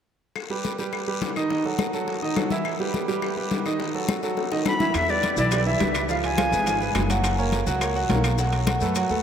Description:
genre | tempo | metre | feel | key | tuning
latin, salsa | 209 BPM | 4/4 | straight | unclear | A4 = 439 Hz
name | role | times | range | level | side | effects
bongos | percussion | 0.4-9.1 s | none | -33 LUFS | left 6 dB | none
claves | percussion | 0.4-8.8 s | none | -40 LUFS | left 9 dB | none
congas | percussion | 0.4-9.2 s | none | -31 LUFS | left 4 dB | none
guiro | percussion | 0.4-9.2 s | none | -37 LUFS | left 9 dB | none
clear concert grand piano | accompaniment | 0.5-9.2 s | D#3 to F#5 | -25 LUFS | right 3 dB | none
bright silver concert flute | melody | 4.7-7.1 s | D5 to B5 | -26 LUFS | left 2 dB | none
upright bass | bass | 4.9-9.2 s | F#1 to F#2 | -26 LUFS | equal | none
maracas | percussion | 4.9-9.2 s | none | -38 LUFS | left 11 dB | none
timbales | percussion | 4.9-9.1 s | none | -34 LUFS | right 4 dB | none
room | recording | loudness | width
wet cathedral reverb, RT60 6.1 s | in a vast, echoing space | -21 LUFS | side -8 dB against mid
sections
0.4-4.9 A section; 4.9-9.2 B section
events
drum fill 4.4-4.9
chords
0.4 D#aug; 1.5 D#dim; 2.7 Em; 3.8 B7; 4.9 Em7; 6.1 C#7; 7.2 F#; 8.4 B7

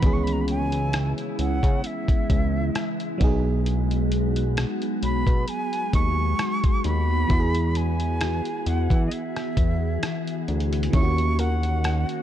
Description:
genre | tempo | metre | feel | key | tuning
contemporary R&B | 66 BPM | 4/4 | swing 54% on 16ths | unclear | A4 = 439 Hz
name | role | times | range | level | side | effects
jazz flute | melody | 0.0-12.2 s | D#5 to C#6 | -30 LUFS | right 1 dB | ping-pong delay
FM electric piano | accompaniment | 0.0-12.2 s | D#3 to G#4 | -30 LUFS | right 3 dB | chorus
glassy FM pad | sustained chords | 0.0-12.2 s | C#3 to G#4 | -30 LUFS | left 2 dB | ensemble chorus, built-in reverb, sidechain pumping
fat analog bass | bass | 0.0-12.1 s | B1 to E3 | -24 LUFS | equal | none
dusty soul sampler-style drum kit | drums | 0.0-12.2 s | hi-hat, kick drum, rim click | -24 LUFS | equal | none
soft round pluck | texture | 11.4-12.2 s | A#4 | -40 LUFS | left 2 dB | chorus, ping-pong delay
room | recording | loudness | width
little or no reverb | dark, warm production | -21 LUFS | side -11 dB against mid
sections
0.0-12.2 A section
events
none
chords
0.0 C#m7; 3.2 B6; 7.3 E; 10.9 D#m7

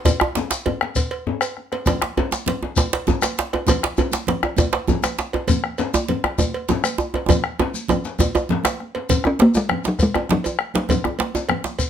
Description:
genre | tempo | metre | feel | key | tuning
west african traditional, West African drum ensemble | 133 BPM (dotted quarters) | 12/8 | straight | F# major pentatonic | A4 = 440 Hz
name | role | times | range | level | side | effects
bombo | percussion | 0.1-11.9 s | none | -22 LUFS | left 3 dB | none
cowbell | percussion | 0.1-11.9 s | none | -27 LUFS | right 6 dB | none
djembe | percussion | 0.1-11.6 s | none | -26 LUFS | left 6 dB | none
djembe | percussion | 0.1-11.8 s | none | -22 LUFS | right 4 dB | none
shekere | percussion | 0.1-11.9 s | none | -27 LUFS | left 5 dB | none
congas | percussion | 1.9-11.8 s | none | -28 LUFS | right 5 dB | none
talking drum | melody | 9.3-11.5 s | F#3 to C#4 | -17 LUFS | equal | none
room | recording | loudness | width
moderate studio reverb, RT60 0.6 s | none | -18 LUFS | side -9 dB against mid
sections
0.0-9.1 A section; 9.1-11.9 B section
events
drum fill 7.3-9.1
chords
none

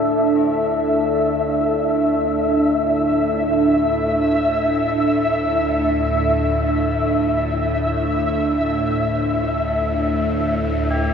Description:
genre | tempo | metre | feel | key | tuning
dark ambient drone | free time | none | none | unclear | A4 = 440 Hz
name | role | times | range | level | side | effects
deep dark ambient pad | sustained chords | 0.0-11.1 s | D4 to E5 | -19 LUFS | right 1 dB | chorus, built-in reverb
tubular bells | arpeggios | 0.0-11.1 s | C4 to G4 | -37 LUFS | equal | none
bowed-like drone | drone | 0.0-11.1 s | D2 to A2 | -25 LUFS | left 1 dB | built-in reverb, phaser
flickering grainy texture | texture | 0.0-11.1 s | E5 | -23 LUFS | left 1 dB | built-in reverb
room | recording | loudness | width
wet cathedral reverb, RT60 6.9 s | none | -17 LUFS | side -7 dB against mid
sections
0.0-11.1 A section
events
fade-in on synth drone 0.0-11.1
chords
0.0 Dsus2

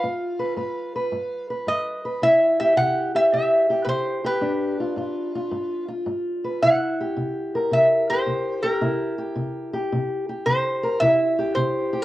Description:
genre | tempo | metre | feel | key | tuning
acoustic country blues, solo or duo | 109 BPM | 4/4 | swing 68% on 8ths | unclear | A4 = 440 Hz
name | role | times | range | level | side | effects
metal-body resonator slide guitar | melody | 0.0-12.0 s | Bb4 to F#5 | -20 LUFS | equal | cassette tape
fingerpicked steel-string acoustic guitar | accompaniment | 0.0-12.0 s | G2 to B4 | -25 LUFS | left 1 dB | cassette tape
room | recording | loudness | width
moderate small room reverb, RT60 0.6 s | home recording on cassette | -20 LUFS | side -15 dB against mid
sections
0.0-6.6 A section; 6.6-12.0 A section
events
none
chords
0.0 G7; 2.2 C; 4.4 G7; 6.6 C7

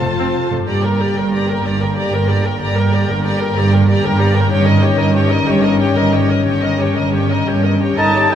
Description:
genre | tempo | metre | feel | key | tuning
cinematic | 124 BPM (dotted quarters) | 12/8 | straight | G minor | A4 = 445 Hz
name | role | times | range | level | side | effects
rich symphonic violin section | melody | 0.0-8.3 s | Eb5 to Bb5 | -26 LUFS | left 3 dB | none
warm symphonic violin section | second line | 0.0-8.3 s | A4 to Eb5 | -22 LUFS | left 2 dB | none
warm symphonic viola section | accompaniment | 0.0-8.3 s | A3 to Bb4 | -22 LUFS | equal | none
concert harp | arpeggios | 0.0-8.3 s | F2 to C5 | -25 LUFS | left 4 dB | none
rich symphonic cello section | bass | 0.0-8.3 s | F2 to G2 | -18 LUFS | right 3 dB | none
warm symphonic double bass section | bass | 0.0-8.3 s | F1 to G1 | -20 LUFS | right 3 dB | none
dark French horn section | sustained chords | 0.7-8.3 s | D3 to A4 | -21 LUFS | left 6 dB | none
bright small flute group | second line | 8.0-8.3 s | G5 to A5 | -18 LUFS | left 4 dB | none
warm oboe | second line | 8.0-8.3 s | G5 to A5 | -16 LUFS | right 1 dB | none
mellow trumpet | stabs | 8.0-8.3 s | Eb4 | -17 LUFS | right 1 dB | none
room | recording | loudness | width
wet scoring stage reverb, RT60 1.9 s | recorded in a church or concert hall | -13 LUFS | side -9 dB against mid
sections
0.7-8.3 A section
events
none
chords
0.0 F; 0.7 Gm; 4.5 Eb7/G

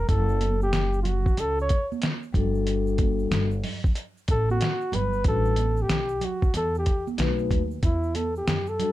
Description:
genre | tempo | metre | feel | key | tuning
hip hop, jazz-hop | 93 BPM | 4/4 | swing 65% on 16ths | unclear | A4 = 440 Hz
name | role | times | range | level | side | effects
mellow flugelhorn | melody | 0.0-8.9 s | E4 to C#5 | -27 LUFS | equal | plate reverb
upright bass | bass | 0.0-8.8 s | F#1 to F#2 | -27 LUFS | equal | none
vibraphone with soft mallets | accompaniment | 0.1-8.9 s | F#3 to B4 | -29 LUFS | left 5 dB | plate reverb
lo-fi sampler-style drum kit | drums | 0.1-8.9 s | hi-hat, kick drum, snare drum | -25 LUFS | equal | overdrive
egg shaker and congas | percussion | 0.1-8.9 s | none | -36 LUFS | right 9 dB | none
room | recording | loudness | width
light reverb | dark, warm production | -22 LUFS | side -15 dB against mid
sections
0.0-8.9 A section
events
flugelhorn solo 0.0-8.9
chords
0.1 F#m; 2.3 Gmaj7sus2; 5.3 A13sus4; 7.2 B7; 7.8 Emadd9

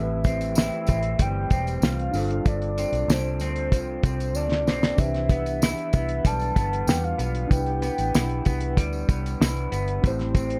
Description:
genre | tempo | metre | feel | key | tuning
indie pop, bedroom pop | 95 BPM | 4/4 | straight | unclear | A4 = 441 Hz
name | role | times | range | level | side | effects
soft octave-layered synth lead | melody | 0.0-10.6 s | C5 to A5 | -32 LUFS | equal | analog chorus
electric guitar through a small old amp | accompaniment | 0.0-10.6 s | G2 to E4 | -34 LUFS | equal | subtle chorus, vibrato effect
mellow tine electric piano | accompaniment | 0.0-10.6 s | E3 to C5 | -35 LUFS | equal | none
vintage muted fingered electric bass | bass | 0.0-10.6 s | E1 to E2 | -30 LUFS | equal | none
cloth-damped thuddy drum kit | drums | 0.2-10.6 s | hi-hat, kick drum, snare drum | -24 LUFS | equal | vintage 12-bit sampler grit
tambourine | percussion | 0.2-10.5 s | none | -42 LUFS | equal | none
room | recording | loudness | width
light reverb | dark, warm production | -24 LUFS | mono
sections
0.0-10.6 A section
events
drum fill 4.4-5.0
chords
0.0 Am7; 2.1 G7sus4; 5.0 Cmaj7; 10.0 Am7

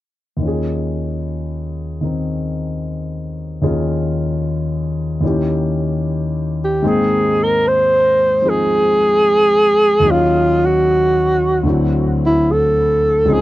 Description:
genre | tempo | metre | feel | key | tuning
jazz | 75 BPM | 4/4 | swing 69% on 8ths | unclear | A4 = 440 Hz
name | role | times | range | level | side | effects
warm concert grand piano | accompaniment | 0.4-13.4 s | Db2 to G5 | -18 LUFS | left 1 dB | none
mellow alto saxophone | melody | 6.6-13.4 s | E4 to C5 | -13 LUFS | right 1 dB | none
room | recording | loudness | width
light reverb | dry, close 1970s-style studio recording | -14 LUFS | side -16 dB against mid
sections
0.4-6.8 A section; 6.8-13.4 B section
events
none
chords
0.4 Eb7sus4; 5.2 Eb7b9; 6.8 Abmaj9; 10.0 Ebm7; 11.6 D9

